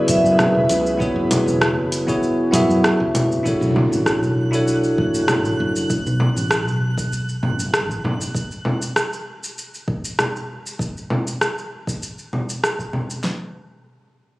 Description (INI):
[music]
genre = sunset chillout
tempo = 98 BPM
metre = 4/4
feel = straight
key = B dorian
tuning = A4 = 443 Hz
[part]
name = bell-like tine electric piano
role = accompaniment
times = 0.0-5.9 s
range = B3 to E5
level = -19 LUFS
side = equal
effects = auto-pan, vintage 12-bit sampler grit, ping-pong delay
[part]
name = airy breathy pad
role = sustained chords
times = 0.0-3.4 s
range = C#3 to B4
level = -28 LUFS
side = equal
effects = chorus
[part]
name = vibraphone with medium mallets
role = melody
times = 0.1-2.8 s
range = B4 to E5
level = -22 LUFS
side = equal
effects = ping-pong delay
[part]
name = woody fretless electric bass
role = bass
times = 0.1-8.3 s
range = E1 to F#2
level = -22 LUFS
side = equal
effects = none
[part]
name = deep house drum kit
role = drums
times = 0.1-13.4 s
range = handclaps, kick drum, snare drum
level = -26 LUFS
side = equal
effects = none
[part]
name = deep house drum kit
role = drums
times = 0.1-13.2 s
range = congas, hi-hat, rim click, shaker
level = -22 LUFS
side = equal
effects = none
[part]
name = impact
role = sound effects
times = 3.5-5.9 s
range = none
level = -27 LUFS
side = equal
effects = none
[part]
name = twinkling granular texture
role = texture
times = 4.0-8.4 s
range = F#6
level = -33 LUFS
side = right 2 dB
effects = built-in reverb
[sound]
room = moderate concert hall reverb, RT60 2.2 s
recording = recorded on a phone in the room, club reverb, compression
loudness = -18 LUFS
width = side -19 dB against mid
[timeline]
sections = 0.0-3.4 A section; 3.4-13.2 B section; 13.2-14.4 C section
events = impact 3.4-5.9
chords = 0.0 F#9sus4; 3.4 Bm11; 8.3 N.C.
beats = 0.38 | 1.00 1.61 2.22 2.83 | 3.44 4.06 4.67 5.28 | 5.89 6.51 7.12 7.73 | 8.34 8.96 9.57 10.18 | 10.79 11.40 12.02 12.63 | 13.24